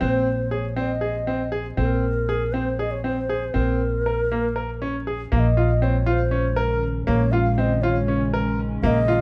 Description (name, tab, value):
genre	contemporary instrumental, chamber music in an uneven meter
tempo	238 BPM (eighths)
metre	7/8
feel	straight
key	Bb minor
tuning	A4 = 439 Hz
part	bass bansuri	melody	0.0-9.2 s	Bb4 to Gb5	-29 LUFS	equal	none
part	bright grand piano	arpeggios	0.0-9.2 s	Bb3 to Bb4	-27 LUFS	equal	none
part	upright bass	bass	0.0-9.2 s	Bb1	-26 LUFS	equal	none
part	warbly tape-like pad	sustained chords	6.4-9.2 s	Db3 to Db4	-30 LUFS	equal	chorus, built-in reverb, phaser
room	moderate recital hall reverb, RT60 1.5 s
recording	dark, warm production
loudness	-23 LUFS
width	mono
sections	0.0-5.3 A section; 5.3-9.2 B section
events	none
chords	0.0 Bb9sus4; 3.5 Bbsus2; 5.3 Bbm11